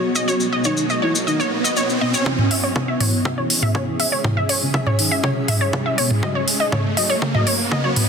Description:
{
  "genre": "melodic techno",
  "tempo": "121 BPM",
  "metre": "4/4",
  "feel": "straight",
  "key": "C# minor",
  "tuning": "A4 = 438 Hz",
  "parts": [
    { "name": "soft octave-layered synth lead", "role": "melody", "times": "0.0-8.0 s", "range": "B3 to F#4", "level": "-27 LUFS", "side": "equal", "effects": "chorus, tremolo, sidechain pumping, dub echo" },
    { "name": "riser", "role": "sound effects", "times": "0.0-8.1 s", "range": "none", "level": "-26 LUFS", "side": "right 2 dB", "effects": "none" },
    { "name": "granular cloud pad", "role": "texture", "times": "0.0-8.1 s", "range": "B3 to E5", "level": "-26 LUFS", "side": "equal", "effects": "built-in reverb, sidechain pumping" },
    { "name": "wide unison pluck", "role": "arpeggios", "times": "0.2-7.9 s", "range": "C#5 to E5", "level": "-23 LUFS", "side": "equal", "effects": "sidechain pumping, dub echo" },
    { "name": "maracas", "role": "percussion", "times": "0.2-2.2 s", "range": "none", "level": "-25 LUFS", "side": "left 3 dB", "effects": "none" },
    { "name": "electronic kick drum", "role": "drums", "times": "2.3-7.8 s", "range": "none", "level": "-25 LUFS", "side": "equal", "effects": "overdrive, high-pass filter on kick, studio reverb" },
    { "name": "techno drum kit", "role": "drums", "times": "2.3-8.1 s", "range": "hi-hat, toms", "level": "-20 LUFS", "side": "equal", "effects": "overdrive, studio reverb" }
  ],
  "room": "light reverb, digital ambience",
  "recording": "dense, heavily limited modern master",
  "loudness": "-17 LUFS",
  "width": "side -6 dB against mid",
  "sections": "0.0-2.3 A section; 2.3-8.1 B section",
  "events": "riser 0.0-2.3, 2.3-8.1; build-up 2.3-8.1; drum fill 2.3-8.1; filter sweep on soft synth lead 2.3-8.1",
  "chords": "0.0 B; 2.3 C#m; 6.2 B"
}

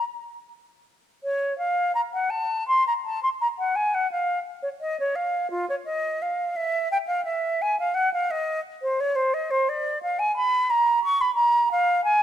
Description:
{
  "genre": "classical, baroque-style fantasia for unaccompanied flute",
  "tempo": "50-60 BPM (dotted quarters)",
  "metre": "6/8",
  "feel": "rubato",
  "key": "Bb minor",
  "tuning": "A4 = 444 Hz",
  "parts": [
    { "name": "silver concert flute", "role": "solo", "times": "0.0-12.2 s", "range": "F4 to Db6", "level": "-22 LUFS", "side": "equal", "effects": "none" }
  ],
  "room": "moderate scoring stage reverb, RT60 1.6 s",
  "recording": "close, detailed microphones",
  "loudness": "-22 LUFS",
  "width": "side -10 dB against mid",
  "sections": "0.0-1.2 A section; 1.2-12.2 B section",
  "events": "none",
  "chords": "none"
}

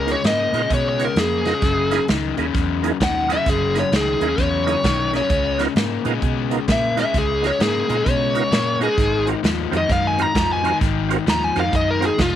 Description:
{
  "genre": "electric blues shuffle",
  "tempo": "131 BPM",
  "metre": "4/4",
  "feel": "swing 63% on 8ths",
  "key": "Db mixolydian",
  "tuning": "A4 = 443 Hz",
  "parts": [
    { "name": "dark smooth lead guitar", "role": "melody", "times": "0.0-12.3 s", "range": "F4 to Bb5", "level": "-21 LUFS", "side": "equal", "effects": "overdrive" },
    { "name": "biting overdriven guitar", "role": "riff", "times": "0.0-12.4 s", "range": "Gb2 to Bb3", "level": "-23 LUFS", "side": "left 9 dB", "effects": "none" },
    { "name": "vintage muted fingered electric bass", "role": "bass", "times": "0.0-12.4 s", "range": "F1 to Cb3", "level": "-26 LUFS", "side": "right 2 dB", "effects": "none" },
    { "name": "tonewheel organ", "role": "accompaniment", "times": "0.1-12.1 s", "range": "Bb3 to Db5", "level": "-26 LUFS", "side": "right 11 dB", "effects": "slow rotary speaker, overdrive, chorus vibrato" },
    { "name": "natural country drum kit", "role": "drums", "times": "0.1-12.3 s", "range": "hi-hat, kick drum, snare drum", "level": "-23 LUFS", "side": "right 1 dB", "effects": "none" }
  ],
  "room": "small room ambience",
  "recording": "1960s-style stereo with parts hard left and right",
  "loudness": "-17 LUFS",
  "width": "side -10 dB against mid",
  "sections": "0.0-12.4 A section",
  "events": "lead electric guitar solo 0.0-12.4",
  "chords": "0.0 Db13; 1.6 Gb13; 5.3 Db13; 9.0 Ab13"
}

